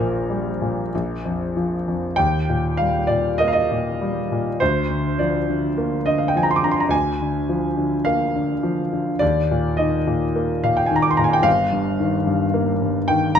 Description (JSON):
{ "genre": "classical, romantic nocturne for solo piano", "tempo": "47-56 BPM", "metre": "4/4", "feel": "rubato", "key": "Eb major", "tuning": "A4 = 440 Hz", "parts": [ { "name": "clear grand piano", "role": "solo", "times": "0.0-13.4 s", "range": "G1 to D6", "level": "-18 LUFS", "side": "equal", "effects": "none" } ], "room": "moderate recital hall reverb, RT60 1.3 s", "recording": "close, detailed microphones", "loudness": "-18 LUFS", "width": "side -8 dB against mid", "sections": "0.0-13.4 A section", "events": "none", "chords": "0.0 Gm/Bb; 0.9 Bb5; 2.2 Eb; 4.6 Bb/D; 9.2 Eb5; 11.5 Eb/G", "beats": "0.92 | 2.17 3.39 4.61 5.78 | 6.93 8.07 9.22 10.35 | 11.46 12.55" }